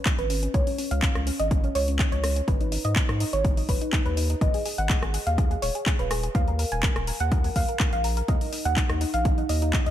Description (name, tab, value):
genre	progressive house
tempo	124 BPM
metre	4/4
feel	straight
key	unclear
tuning	A4 = 440 Hz
part	soft round pluck	arpeggios	0.1-9.9 s	Db4 to Ab5	-28 LUFS	equal	analog chorus, sidechain pumping, ping-pong delay
part	electronic kick drum	drums	0.1-9.8 s	none	-24 LUFS	equal	overdrive, studio reverb
part	house drum kit	drums	0.1-9.9 s	handclaps, hi-hat, rim click	-31 LUFS	left 1 dB	studio reverb
part	saturated sub bass	bass	0.2-9.9 s	Eb1 to Ab2	-27 LUFS	equal	sidechain pumping
room	little or no reverb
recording	none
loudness	-22 LUFS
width	side -12 dB against mid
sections	0.0-9.9 A section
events	none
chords	0.0 Db5; 2.5 Ab5; 6.3 Eb5